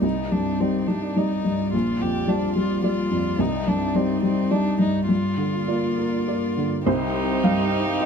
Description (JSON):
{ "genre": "neoclassical piano and strings", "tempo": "106 BPM", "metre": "3/4", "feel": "rubato", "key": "unclear", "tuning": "A4 = 440 Hz", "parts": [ { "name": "rich violin", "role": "melody", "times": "0.0-8.1 s", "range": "C4 to G4", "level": "-30 LUFS", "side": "left 3 dB", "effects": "none" }, { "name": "felt-muted upright piano", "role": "accompaniment", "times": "0.0-8.1 s", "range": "Bb1 to F5", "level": "-21 LUFS", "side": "equal", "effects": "none" }, { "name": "dark chamber string section", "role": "sustained chords", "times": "0.0-8.1 s", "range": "G3 to D5", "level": "-30 LUFS", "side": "right 2 dB", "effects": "none" }, { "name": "rich viola", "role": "accompaniment", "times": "6.9-8.1 s", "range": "Eb4", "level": "-28 LUFS", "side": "right 2 dB", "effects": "none" } ], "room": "light reverb", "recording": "close, detailed microphones", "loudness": "-20 LUFS", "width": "side -6 dB against mid", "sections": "0.0-6.9 A section; 6.9-8.1 B section", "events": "none", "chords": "0.0 Cmadd9; 1.7 Gm7/Bb; 3.4 Cmadd9; 5.1 Gm7; 6.9 Cm" }